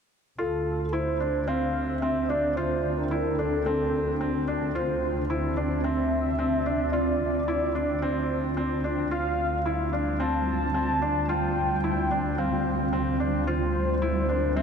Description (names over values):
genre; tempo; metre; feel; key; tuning
electronica; 110 BPM; 4/4; straight; D minor; A4 = 440 Hz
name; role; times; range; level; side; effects
warm velvety synth lead; melody; 0.4-14.6 s; A4 to A5; -29 LUFS; equal; chorus
granular cloud pad; sustained chords; 1.2-14.6 s; G3 to D5; -31 LUFS; right 1 dB; built-in reverb
felt-muted upright piano; riff; 0.4-14.6 s; C4 to F4; -29 LUFS; equal; ping-pong delay
warm chamber double bass section; bass; 0.4-14.6 s; D2; -30 LUFS; equal; none
room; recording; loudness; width
wet huge ambient reverb, RT60 5.2 s; dark, warm production; -24 LUFS; side -6 dB against mid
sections
0.4-14.6 A section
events
none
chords
0.4 Dm7; 9.1 Fsus2/D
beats
| 0.39 0.93 1.48 2.02 | 2.57 3.11 3.66 4.20 | 4.75 5.29 5.84 6.39 | 6.93 7.48 8.02 8.57 | 9.11 9.66 10.20 10.75 | 11.29 11.84 12.39 12.93 | 13.48 14.02 14.57